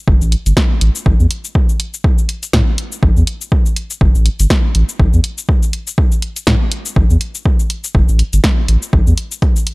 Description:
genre	minimal techno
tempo	122 BPM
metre	4/4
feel	swing 57% on 16ths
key	unclear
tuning	A4 = 440 Hz
part	saturated sub bass	bass	0.1-9.1 s	G1 to A2	-12 LUFS	equal	sidechain pumping
part	electronic kick drum	drums	0.1-9.5 s	none	-13 LUFS	equal	overdrive
part	punchy analog drum machine	drums	0.2-9.7 s	cabasa, hi-hat, snare drum	-20 LUFS	equal	overdrive
room	little or no reverb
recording	dry, gritty hardware recording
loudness	-12 LUFS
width	side -25 dB against mid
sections	0.0-9.7 A section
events	none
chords	none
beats	0.08 0.57 | 1.06 1.55 2.04 2.54 | 3.03 3.52 4.01 4.50 | 4.99 5.49 5.98 6.47 | 6.96 7.45 7.95 8.44 | 8.93 9.42

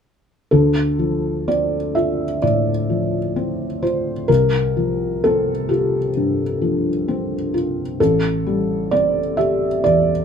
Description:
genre	neoclassical minimalist piano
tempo	64 BPM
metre	4/4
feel	rubato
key	D minor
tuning	A4 = 440 Hz
part	felt-muted upright piano	solo	0.5-10.2 s	A1 to E5	-17 LUFS	equal	none
room	moderate studio reverb, RT60 0.7 s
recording	minimal, uncompressed stereo recording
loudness	-17 LUFS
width	side -7 dB against mid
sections	0.5-10.2 A section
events	none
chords	0.5 Dm7; 4.3 C7sus4; 8.0 Am7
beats	| 0.51 1.47 2.42 3.35 | 4.29 5.22 6.14 7.06 | 7.98 8.90 9.83

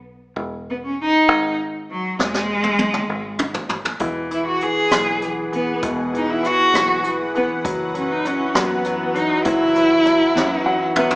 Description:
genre	six-eight pop ballad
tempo	66 BPM (dotted quarters)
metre	6/8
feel	straight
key	E major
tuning	A4 = 440 Hz
part	fingered electric bass	bass	0.0-11.2 s	E1 to F#2	-26 LUFS	equal	none
part	warm cello	melody	0.7-11.1 s	F#3 to G#4	-18 LUFS	equal	none
part	jazz brush drum kit	drums	2.2-11.2 s	hi-hat, kick drum, rim click, snare drum, toms	-23 LUFS	equal	none
part	bright concert grand piano	accompaniment	4.0-11.2 s	B2 to F#5	-24 LUFS	left 1 dB	none
part	warm analog pad	sustained chords	4.0-11.2 s	E3 to F#5	-26 LUFS	equal	chorus
room	wet recital hall reverb, RT60 1.4 s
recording	recorded in a church or concert hall, small speaker sound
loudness	-17 LUFS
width	side -23 dB against mid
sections	0.0-11.2 A section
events	drum fill 2.2-4.0, 10.4-11.2; grand piano fill 10.4-11.2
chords	0.4 E; 4.0 Eadd9; 7.6 Bsus4/F#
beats	| 0.37 1.28 | 2.19 3.10 | 4.01 4.92 | 5.83 6.74 | 7.64 8.55 | 9.46 10.37

